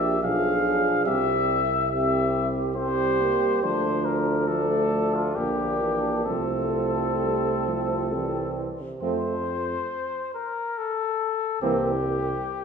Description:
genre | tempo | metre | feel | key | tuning
classical, brass quintet | 64-72 BPM | 3/4 | rubato | F major | A4 = 441 Hz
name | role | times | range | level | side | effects
mellow trumpet | melody | 0.0-12.6 s | F4 to F5 | -26 LUFS | left 5 dB | none
mellow flugelhorn | second line | 0.0-11.9 s | C4 to G#4 | -29 LUFS | right 6 dB | none
warm French horn | accompaniment | 0.0-11.9 s | G3 to D4 | -31 LUFS | left 2 dB | none
warm euphonium | accompaniment | 0.0-11.9 s | C3 to G3 | -32 LUFS | right 3 dB | none
clear bass trombone | bass | 0.0-12.3 s | Bb1 to F2 | -30 LUFS | right 2 dB | none
room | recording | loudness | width
wet recital hall reverb, RT60 1.5 s | recorded in a church or concert hall, nothing above 10.7 kHz | -22 LUFS | side -6 dB against mid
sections
0.0-9.0 A section; 9.0-12.6 B section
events
none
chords
0.2 Bdim7; 1.1 C; 3.6 Dm; 5.4 Gm/Bb; 6.3 F/C; 8.1 C; 9.0 F; 11.6 C7

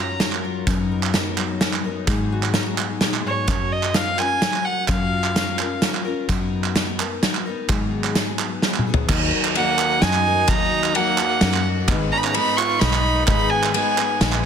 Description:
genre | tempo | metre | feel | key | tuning
indie folk with a building arrangement | 128 BPM | 3/4 | straight | unclear | A4 = 440 Hz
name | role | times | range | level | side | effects
warm fiddle | melody | 0.0-0.2, 3.3-5.8, 9.6-14.4 s | C#5 to C#6 | -22 LUFS | right 1 dB | digital delay
fingerpicked steel-string acoustic guitar | accompaniment | 0.0-4.9 s | F#2 to A#4 | -29 LUFS | left 4 dB | none
picked twelve-string acoustic guitar | accompaniment | 0.0-14.5 s | G#2 to B4 | -28 LUFS | left 7 dB | none
fingered electric bass | bass | 0.0-14.5 s | G#1 to G#2 | -25 LUFS | equal | none
loose indie drum kit | drums | 0.2-14.3 s | crash cymbal, hi-hat, kick drum, ride cymbal, snare drum, toms | -23 LUFS | equal | none
group handclap | percussion | 0.3-14.4 s | none | -27 LUFS | right 9 dB | none
warm grand piano | accompaniment | 9.1-14.5 s | G#1 to F#5 | -30 LUFS | left 7 dB | none
clear trumpet | second line | 9.6-14.4 s | A#3 to E#4 | -26 LUFS | right 8 dB | none
room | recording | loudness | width
light reverb, small room ambience | dense, heavily limited modern master | -18 LUFS | side -7 dB against mid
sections
0.0-9.1 A section; 9.1-14.5 B section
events
drum fill 8.6-9.1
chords
0.0 F#maj7; 0.7 Bmaj7/F#; 2.1 G#m7; 3.5 F#maj7; 6.3 Bmaj7/F#; 7.7 G#m7; 9.1 D#m; 11.9 G#m

